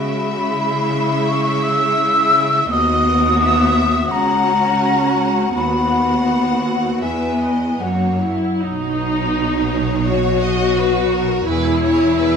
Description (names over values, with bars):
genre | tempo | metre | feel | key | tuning
cinematic, emotional film score for orchestra | 84 BPM | 4/4 | rubato | B major | A4 = 440 Hz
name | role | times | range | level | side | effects
rich studio violin section | melody | 0.0-12.4 s | G#4 to F#5 | -26 LUFS | left 4 dB | none
mellow hollow silver concert flute | second line | 0.0-8.6 s | F#5 to E6 | -18 LUFS | left 1 dB | none
rich studio viola section | accompaniment | 0.0-12.4 s | G#3 to B4 | -19 LUFS | equal | none
bright chamber cello section | bass | 0.0-12.4 s | C#2 to C#3 | -22 LUFS | equal | none
rich studio double bass section | bass | 8.6-12.4 s | E1 to B1 | -24 LUFS | right 4 dB | none
rich studio violin section | second line | 10.1-12.4 s | A#4 to D#5 | -23 LUFS | left 4 dB | none
room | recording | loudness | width
moderate scoring stage reverb, RT60 1.8 s | studio ambience | -15 LUFS | side -6 dB against mid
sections
0.0-8.6 A section; 8.6-12.4 B section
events
none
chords
0.0 C#m; 2.7 B/D#; 4.1 F#/C#; 5.6 B/D#; 7.0 E; 7.8 F#; 8.6 Badd9; 11.5 E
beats
0.58 1.28 1.98 | 2.70 3.41 4.12 4.83 | 5.56 6.28 7.02 7.81 | 8.62 9.36 10.08 10.79 | 11.48 12.19